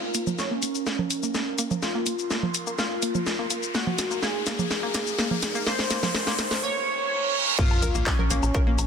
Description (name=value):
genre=melodic techno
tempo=125 BPM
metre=4/4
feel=straight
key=Bb minor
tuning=A4 = 440 Hz
part: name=resonant sweep polysynth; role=melody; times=0.0-8.9 s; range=Db4 to Db5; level=-29 LUFS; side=equal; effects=chorus, sidechain pumping, tape echo
part: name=riser, reverse cymbal and sub drop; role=sound effects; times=0.0-8.9 s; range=none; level=-31 LUFS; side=right 1 dB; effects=none
part: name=ethereal airy pad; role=texture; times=0.0-6.6 s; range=Eb4 to C6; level=-38 LUFS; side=right 3 dB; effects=ensemble chorus, built-in reverb, sidechain pumping
part: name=analog pluck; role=arpeggios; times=0.1-8.7 s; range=Bb3 to Bb4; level=-33 LUFS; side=left 1 dB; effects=chorus, cassette tape, sidechain pumping, tape echo
part: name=techno drum kit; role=drums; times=0.1-8.9 s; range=congas, crash cymbal, handclaps, hi-hat, shaker, snare drum, woodblock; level=-27 LUFS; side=right 1 dB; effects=sidechain pumping on perc, sidechain pumping on hats, sidechain pumping on cymbals
part: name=electronic kick drum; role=drums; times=7.6-8.6 s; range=none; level=-23 LUFS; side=equal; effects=distortion
part: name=tight sequencer bass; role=bass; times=7.8-8.9 s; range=Bb1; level=-25 LUFS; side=equal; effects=sidechain pumping
room=light reverb, digital ambience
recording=dense, heavily limited modern master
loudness=-23 LUFS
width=side -7 dB against mid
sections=0.0-7.6 A section; 7.6-8.9 B section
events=build-up 0.0-7.6; drum fill 0.0-6.6; riser 0.0-6.6; filter sweep on synth arpeggio sound 0.0-7.6; filter sweep on analog polysynth 0.0-7.6; reverse cymbal 6.6-7.6; drop 7.6-8.9; impact 7.6-8.9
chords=0.0 Bbm